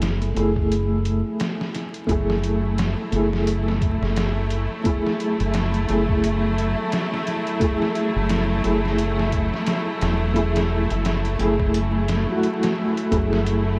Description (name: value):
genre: trip hop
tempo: 87 BPM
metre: 4/4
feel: swing 58% on 16ths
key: F# minor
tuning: A4 = 440 Hz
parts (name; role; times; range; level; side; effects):
- felt-muted upright piano; accompaniment; 0.0-13.8 s; A3 to G#4; -26 LUFS; equal; tremolo, tape echo
- deep dub fingered electric bass; bass; 0.0-13.8 s; E1 to F#1; -26 LUFS; equal; none
- trip hop sampler-style drum kit; drums; 0.0-13.7 s; hi-hat, kick drum, snare drum; -30 LUFS; equal; none
- rich studio string section; sustained chords; 2.1-13.8 s; F#3 to E4; -30 LUFS; equal; none
room: moderate huge ambient reverb, RT60 7.1 s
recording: dreamy mix soaked in reverb, vinyl crackle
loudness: -22 LUFS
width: mono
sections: 0.0-13.1 A section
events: none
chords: 0.0 F#m7